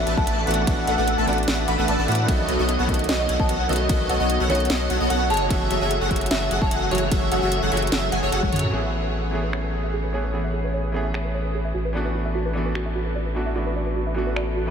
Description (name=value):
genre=future bass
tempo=149 BPM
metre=4/4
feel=half-time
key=A major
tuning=A4 = 439 Hz
part: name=buzzing marimba with medium mallets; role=melody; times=0.0-8.7 s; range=C#5 to A5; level=-30 LUFS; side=left 1 dB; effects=sidechain pumping, ping-pong delay
part: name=clear grand piano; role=accompaniment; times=0.0-14.7 s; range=D#3 to B4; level=-28 LUFS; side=right 1 dB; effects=sidechain pumping, tape echo
part: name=airy dreamy lead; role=arpeggios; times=0.0-8.7 s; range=C#5 to B5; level=-29 LUFS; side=left 1 dB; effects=chorus, sidechain pumping, tape echo
part: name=supersaw stab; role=riff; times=0.0-8.7 s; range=F#3 to B5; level=-26 LUFS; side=equal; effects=ensemble chorus, sidechain pumping, low-pass filter, tape echo
part: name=saturated sub bass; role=bass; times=0.0-14.7 s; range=F#1 to A2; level=-26 LUFS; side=equal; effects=tube saturation, sidechain pumping
part: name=trap drum kit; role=drums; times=0.1-14.4 s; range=finger snaps, hi-hat, ride cymbal, snare drum, toms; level=-30 LUFS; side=equal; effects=low-pass filter on hats, low-pass filter on snare, low-pass filter on cymbals, low-pass filter on toms
part: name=electronic kick drum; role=drums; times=0.2-8.5 s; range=none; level=-24 LUFS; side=equal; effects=none
part: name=soft round pluck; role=arpeggios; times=8.7-14.7 s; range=F#4 to E5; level=-31 LUFS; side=right 3 dB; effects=chorus, sidechain pumping, tape echo
room=moderate huge ambient reverb, RT60 8.0 s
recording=dreamy mix soaked in reverb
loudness=-20 LUFS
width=side -7 dB against mid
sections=0.0-8.7 A section; 8.7-14.7 B section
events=drop 0.0-8.7; drum fill 8.4-8.7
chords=0.0 D69/A; 2.3 B7; 5.3 F#m7; 8.7 Amaj9; 11.7 D69/A